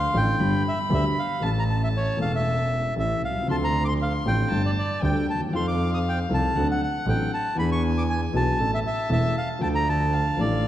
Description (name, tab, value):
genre	tango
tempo	117 BPM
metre	4/4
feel	rubato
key	D minor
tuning	A4 = 440 Hz
part	bandoneon	melody	0.0-10.7 s	C#5 to Eb6	-27 LUFS	equal	none
part	warm violin	second line	0.0-10.7 s	F5 to C6	-32 LUFS	equal	none
part	warm grand piano	accompaniment	0.0-10.7 s	E1 to A4	-26 LUFS	left 2 dB	none
part	warm double bass	bass	0.0-10.7 s	E1 to F2	-26 LUFS	right 1 dB	none
room	moderate concert hall reverb, RT60 1.8 s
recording	dark, warm production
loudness	-22 LUFS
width	side -12 dB against mid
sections	0.0-10.7 A section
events	none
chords	0.4 G; 1.4 A; 3.5 Dm7; 4.5 Gsus2; 5.5 F7; 6.6 D7; 7.6 E7; 8.6 A; 9.6 Dm